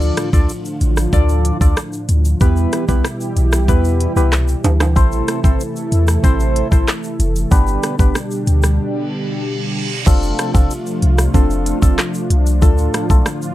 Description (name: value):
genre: dancehall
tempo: 94 BPM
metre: 4/4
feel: straight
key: unclear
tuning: A4 = 443 Hz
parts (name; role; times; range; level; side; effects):
- percussive organ stab; accompaniment; 0.0-13.3 s; A3 to D5; -20 LUFS; equal; chorus, phaser, sidechain pumping
- warm analog pad; sustained chords; 0.0-13.5 s; A2 to A4; -22 LUFS; equal; chorus, sidechain pumping
- clean 808-style bass; bass; 0.0-13.2 s; F1 to E2; -15 LUFS; equal; none
- island pop drum kit; drums; 0.0-13.5 s; crash cymbal, handclaps, hi-hat, kick drum, rim click, shaker; -15 LUFS; equal; none
- egg shaker and timbales; percussion; 0.0-13.5 s; none; -29 LUFS; right 4 dB; none
- reverse cymbal; sound effects; 9.1-10.1 s; none; -26 LUFS; right 6 dB; none
room: light reverb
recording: none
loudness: -13 LUFS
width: side -15 dB against mid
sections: 0.0-10.1 A section; 10.1-13.5 B section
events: break 8.8-10.1; reverse cymbal 9.1-10.1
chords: 0.0 Dm; 2.4 Em; 5.0 Am; 7.5 G; 10.1 F6; 12.6 Dm